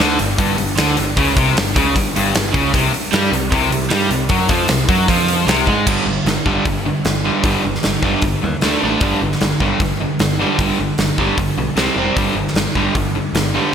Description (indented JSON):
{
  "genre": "hard rock",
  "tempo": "153 BPM",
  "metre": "4/4",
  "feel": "straight",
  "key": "unclear",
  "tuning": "A4 = 440 Hz",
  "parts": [
    { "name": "overdriven electric guitar", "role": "riff", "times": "0.0-13.7 s", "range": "G2 to D4", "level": "-20 LUFS", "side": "left 10 dB", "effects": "none" },
    { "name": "overdriven semi-hollow guitar", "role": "riff", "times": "0.0-13.7 s", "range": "G2 to D4", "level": "-19 LUFS", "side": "right 7 dB", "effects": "none" },
    { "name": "modern bright picked electric bass", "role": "bass", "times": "0.0-13.6 s", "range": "F1 to Ab2", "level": "-23 LUFS", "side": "equal", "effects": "none" },
    { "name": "huge arena drum kit", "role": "drums", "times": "0.0-13.4 s", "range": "crash cymbal, hi-hat, kick drum, snare drum", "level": "-19 LUFS", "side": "equal", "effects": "none" }
  ],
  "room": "moderate lush hall reverb, RT60 1.7 s, studio ambience",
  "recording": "bright 1980s-style digital production",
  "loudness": "-14 LUFS",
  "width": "side -8 dB against mid",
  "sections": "0.0-5.9 A section; 5.9-13.7 B section",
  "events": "drum fill 5.7",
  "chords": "0.0 G5; 2.7 C5; 5.9 G5; 8.6 D5; 9.0 G5; 11.8 C5; 12.2 G5"
}